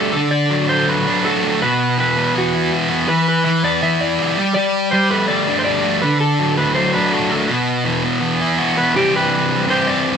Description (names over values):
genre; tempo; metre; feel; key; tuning
rock; 163 BPM; 4/4; straight; unclear; A4 = 438 Hz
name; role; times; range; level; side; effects
electric guitar through a small old amp; melody; 0.0-10.2 s; F#4 to E5; -20 LUFS; equal; none
thick fuzz guitar; riff; 0.0-10.2 s; B2 to G4; -16 LUFS; equal; distortion
room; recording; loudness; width
moderate studio reverb, RT60 0.6 s; band playing live in one room; -14 LUFS; side -7 dB against mid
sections
0.0-9.0 A section; 9.0-10.2 B section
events
none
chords
0.1 D; 1.6 Bsus4; 3.1 Em; 4.4 Gsus2; 6.0 D; 7.5 Bsus4; 9.0 Cadd9